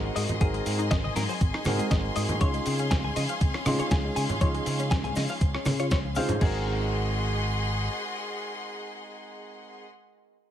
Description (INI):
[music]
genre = nu-disco, nu disco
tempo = 120 BPM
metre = 4/4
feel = straight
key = Ab mixolydian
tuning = A4 = 439 Hz
[part]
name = dark grand piano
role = accompaniment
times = 0.0-9.9 s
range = Ab3 to C6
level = -33 LUFS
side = right 1 dB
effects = sidechain pumping, digital delay
[part]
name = clear studio string section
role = sustained chords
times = 0.0-9.8 s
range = Db4 to C6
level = -34 LUFS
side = left 2 dB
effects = sidechain pumping
[part]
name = analog pluck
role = arpeggios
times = 0.0-6.6 s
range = F3 to C5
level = -36 LUFS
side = left 3 dB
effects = chorus, phaser, vintage 12-bit sampler grit, sidechain pumping, ping-pong delay
[part]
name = fingered electric bass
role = bass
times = 0.0-7.9 s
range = Ab1 to Db3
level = -30 LUFS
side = equal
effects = tube saturation
[part]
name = direct-recorded clean electric guitar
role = riff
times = 0.2-6.6 s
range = Ab4 to Ab5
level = -36 LUFS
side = left 3 dB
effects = analog chorus, vintage 12-bit sampler grit, digital delay
[part]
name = dusty soul sampler-style drum kit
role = drums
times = 0.2-6.5 s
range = crash cymbal, hi-hat, rim click, snare drum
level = -34 LUFS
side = equal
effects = studio reverb
[part]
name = cabasa and congas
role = percussion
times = 0.2-6.4 s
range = none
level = -33 LUFS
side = right 2 dB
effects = none
[part]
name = electronic kick drum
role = drums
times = 0.4-6.5 s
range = none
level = -25 LUFS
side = equal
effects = studio reverb
[sound]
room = digital ambience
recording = none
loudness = -24 LUFS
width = side -10 dB against mid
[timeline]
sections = 0.0-6.4 A section; 6.4-10.4 B section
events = drop 0.0-6.4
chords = 0.0 Ab7; 2.4 Dbmaj7; 6.4 Ab7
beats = | 0.41 0.91 1.41 1.91 | 2.41 2.91 3.41 3.91 | 4.41 4.91 5.41 5.91 | 6.41 6.91 7.41 7.91 | 8.41 8.91 9.41